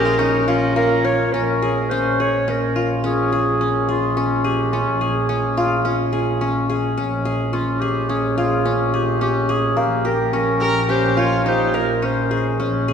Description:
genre	contemporary instrumental, chamber music in an uneven meter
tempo	107 BPM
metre	5/4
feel	straight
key	Bb dorian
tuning	A4 = 440 Hz
part	clear clarinet	melody	0.0-12.5 s	F4 to Db5	-22 LUFS	right 1 dB	none
part	bright viola	second line	0.0-1.3, 10.6-11.9 s	Db4 to Bb4	-26 LUFS	right 2 dB	none
part	qanun	arpeggios	0.0-12.9 s	Bb3 to Bb4	-20 LUFS	left 2 dB	none
part	clear double bass	bass	0.0-12.9 s	Bb1	-24 LUFS	right 2 dB	none
room	wet church reverb, RT60 3.5 s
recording	recorded in a church or concert hall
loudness	-17 LUFS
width	side -7 dB against mid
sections	0.0-1.3 A section; 1.3-12.9 B section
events	none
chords	0.0 Bbm7; 9.8 Eb7/Bb

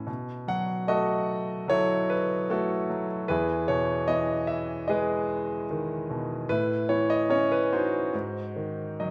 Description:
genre	classical, lyrical solo piano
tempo	75 BPM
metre	4/4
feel	rubato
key	E major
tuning	A4 = 441 Hz
part	bright grand piano	solo	0.0-9.1 s	E2 to F#5	-28 LUFS	equal	none
room	moderate recital hall reverb, RT60 1.3 s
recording	none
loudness	-27 LUFS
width	mono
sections	0.0-9.1 A section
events	grand piano fill 8.6-9.1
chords	0.1 B7sus4; 3.3 Emaj7; 6.5 A; 8.1 G#7

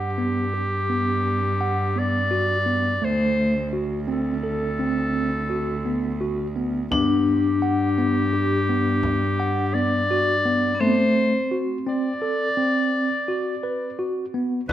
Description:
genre	contemporary instrumental, chamber music in an uneven meter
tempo	170 BPM (eighths)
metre	11/8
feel	straight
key	D mixolydian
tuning	A4 = 441 Hz
part	bright clarinet	melody	0.0-14.7 s	G4 to D5	-25 LUFS	left 2 dB	none
part	tine electric piano	arpeggios	0.0-14.6 s	A3 to F#5	-25 LUFS	right 1 dB	medium stereo tremolo
part	rich cello	bass	0.0-14.7 s	D2 to G2	-27 LUFS	right 2 dB	none
part	vibraphone with hard mallets	second line	6.9-14.3 s	B3 to D4	-25 LUFS	left 4 dB	none
part	frame drum	percussion	6.9-14.7 s	none	-31 LUFS	left 2 dB	none
room	moderate concert hall reverb, RT60 1.8 s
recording	none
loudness	-20 LUFS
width	side -12 dB against mid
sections	0.0-14.7 A section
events	break 10.8-14.7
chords	0.0 Gmaj7; 3.0 D7; 6.9 Gmaj7; 10.8 D7

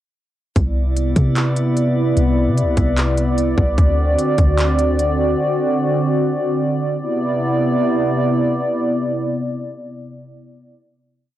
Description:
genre	hip hop, atmospheric cloud-rap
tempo	149 BPM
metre	4/4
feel	half-time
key	C lydian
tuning	A4 = 441 Hz
part	hollow soft pad	sustained chords	0.6-10.7 s	C3 to D5	-18 LUFS	equal	chorus
part	soft 808-style bass	bass	0.6-5.4 s	C2 to C3	-18 LUFS	equal	none
part	trap drum kit	drums	0.6-5.1 s	handclaps, hi-hat, kick drum	-19 LUFS	equal	cassette tape
part	drifting glass-harmonics texture	texture	0.8-3.7 s	B3 to D5	-33 LUFS	right 2 dB	chorus, built-in reverb
room	digital ambience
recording	home recording on cassette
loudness	-15 LUFS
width	side -13 dB against mid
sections	0.6-7.0 verse; 7.0-10.2 final chord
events	none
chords	0.6 Cmaj9; 3.8 D7; 7.0 Cmaj9

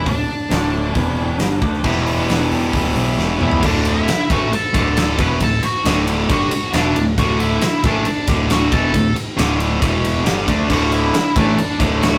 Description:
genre	quiet-loud alternative rock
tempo	136 BPM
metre	4/4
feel	straight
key	D major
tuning	A4 = 439 Hz
part	octave-fuzz lead guitar	melody	0.0-12.2 s	D4 to B5	-24 LUFS	equal	distortion
part	raw garage guitar	riff	0.0-3.6, 10.7-12.2 s	D2 to D4	-24 LUFS	equal	overdrive, spring reverb
part	overdriven picked electric bass	bass	0.0-12.2 s	D1 to E2	-25 LUFS	equal	none
part	big rock drum kit	drums	0.1-12.1 s	crash cymbal, hi-hat, kick drum, ride cymbal, snare drum, toms	-22 LUFS	equal	none
part	distorted electric guitar	riff	1.8-12.2 s	D2 to E4	-21 LUFS	equal	overdrive
room	light reverb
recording	rough rehearsal-room recording, tube saturation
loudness	-17 LUFS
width	mono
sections	0.0-1.8 A section; 1.8-3.6 B section; 3.6-12.2 C section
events	drum fill 3.2-3.6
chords	0.0 D5; 0.9 E5; 1.4 D5; 1.8 Em; 3.6 D; 9.8 E5; 10.3 D

